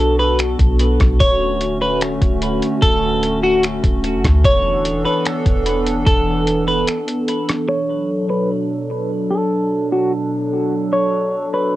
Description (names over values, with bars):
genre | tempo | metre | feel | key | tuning
hip hop, atmospheric cloud-rap | 148 BPM | 4/4 | half-time | B minor | A4 = 440 Hz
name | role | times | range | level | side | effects
clean electric guitar | melody | 0.0-11.7 s | F#4 to C#5 | -20 LUFS | equal | low-pass filter, cassette tape, analog delay
hollow soft pad | sustained chords | 0.0-11.8 s | B2 to A4 | -20 LUFS | equal | chorus, sidechain pumping, low-pass filter, cassette tape
soft 808-style bass | bass | 0.0-6.8 s | D1 to D2 | -20 LUFS | equal | none
lo-fi sampler-style drum kit | drums | 0.4-7.6 s | finger snaps, hi-hat, kick drum, rim click | -17 LUFS | equal | none
room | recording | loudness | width
light reverb | home recording on cassette | -15 LUFS | side -15 dB against mid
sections
0.0-7.7 A section; 7.7-11.8 B section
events
break 6.9-7.7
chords
0.0 Bm7; 1.2 Dmaj7; 4.4 E7sus4; 7.7 Bm7